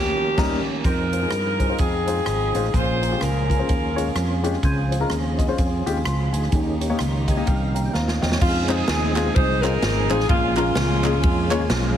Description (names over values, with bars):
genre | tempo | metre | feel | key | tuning
uptempo gospel | 127 BPM | 4/4 | swing 60% on 8ths | unclear | A4 = 440 Hz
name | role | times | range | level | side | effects
clear saxophone section | melody | 0.0-4.4, 8.4-11.9 s | Ab3 to C5 | -24 LUFS | equal | none
percussive tonewheel organ | sustained chords | 0.0-12.0 s | Eb3 to Ab5 | -30 LUFS | right 2 dB | slow rotary speaker, chorus vibrato
fingered electric bass | bass | 0.0-11.9 s | Ab1 to G2 | -24 LUFS | equal | none
warm baby grand piano | accompaniment | 0.4-11.6 s | Bb2 to C6 | -26 LUFS | left 4 dB | none
swinging big-band drum kit | drums | 0.4-11.8 s | crash cymbal, hi-hat, kick drum, ride cymbal, rim click, snare drum | -24 LUFS | equal | none
muted French horn section | sustained chords | 0.8-8.4 s | G3 to C5 | -35 LUFS | right 2 dB | none
group handclap | percussion | 8.7-11.6 s | none | -32 LUFS | right 5 dB | none
room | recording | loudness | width
light reverb | heavily compressed radio sound, multiband compression | -19 LUFS | side -10 dB against mid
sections
0.8-8.4 A section; 8.4-12.0 B section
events
band accent 0.0-0.8; grand piano fill 7.0-8.4; tonewheel organ fill 7.0-8.4, 11.2-12.0; drum fill 7.9-8.4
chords
0.0 Eb7; 0.8 Fm7; 2.7 Bbm7; 4.6 Dbmaj7; 6.5 Eb7; 8.4 Fm7; 10.3 Bbm7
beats
0.38 | 0.85 1.32 1.79 2.27 | 2.74 3.21 3.68 4.16 | 4.63 5.11 5.58 6.05 | 6.53 7.00 7.47 7.94 | 8.41 8.88 9.35 9.82 | 10.29 10.76 11.23 11.70